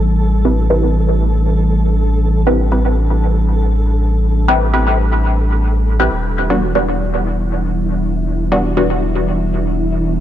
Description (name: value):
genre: techno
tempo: 119 BPM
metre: 4/4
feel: swing 55% on 16ths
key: unclear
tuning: A4 = 435 Hz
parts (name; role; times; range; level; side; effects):
- warbly tape-like pad; sustained chords; 0.0-10.2 s; E3 to D4; -21 LUFS; equal; chorus, built-in reverb
- pure sine sub bass; bass; 0.0-10.2 s; E1 to A1; -16 LUFS; equal; transformer saturation
- flickering grainy texture; texture; 0.0-10.2 s; E4 to A4; -26 LUFS; equal; built-in reverb
- filtered dub chord stab; stabs; 0.4-8.9 s; G3 to B4; -18 LUFS; equal; phaser, dub echo
room: light reverb, digital ambience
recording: dry, gritty hardware recording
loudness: -13 LUFS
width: side -11 dB against mid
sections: 0.0-10.2 A section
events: filter sweep on synth stab 0.0-10.2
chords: 0.0 Am7; 6.1 Em7